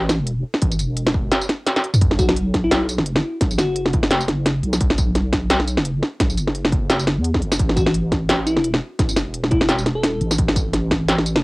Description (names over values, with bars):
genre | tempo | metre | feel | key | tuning
half-time drum and bass | 172 BPM | 4/4 | swing 56% on 16ths, half-time | unclear | A4 = 440 Hz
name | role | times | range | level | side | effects
deep soft wobble bass | bass | 0.0-11.4 s | E1 to E2 | -22 LUFS | equal | chorus
industrial drum kit | drums | 0.1-11.4 s | hi-hat, snare drum, tambourine, toms | -19 LUFS | equal | none
electronic kick drum | drums | 0.6-11.0 s | none | -22 LUFS | equal | distortion
bell-like FM electric piano | melody | 2.2-4.1, 7.8-10.3 s | E4 to A4 | -24 LUFS | left 1 dB | chorus, cassette tape, analog delay
room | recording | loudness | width
light reverb | home recording on cassette | -17 LUFS | side -23 dB against mid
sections
0.0-2.0 A section; 2.0-11.4 A section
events
drop 0.0-2.0, 2.0-11.4; drum fill 1.7-2.0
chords
0.0 A5; 2.0 B5; 7.6 A5